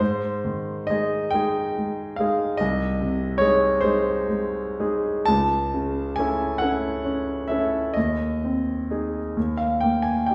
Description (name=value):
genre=classical, romantic nocturne for solo piano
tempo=40-49 BPM (dotted quarters)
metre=12/8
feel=rubato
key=unclear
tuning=A4 = 437 Hz
part: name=clear concert grand piano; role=solo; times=0.0-10.3 s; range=C2 to A5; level=-24 LUFS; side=equal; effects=none
room=wet stone room reverb, RT60 1.2 s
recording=heard from further back in the room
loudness=-24 LUFS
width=mono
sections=0.0-10.3 A section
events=none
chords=0.0 Ab; 2.6 Ab/C; 5.3 A/C#; 8.0 Ab/Eb; 9.4 Eb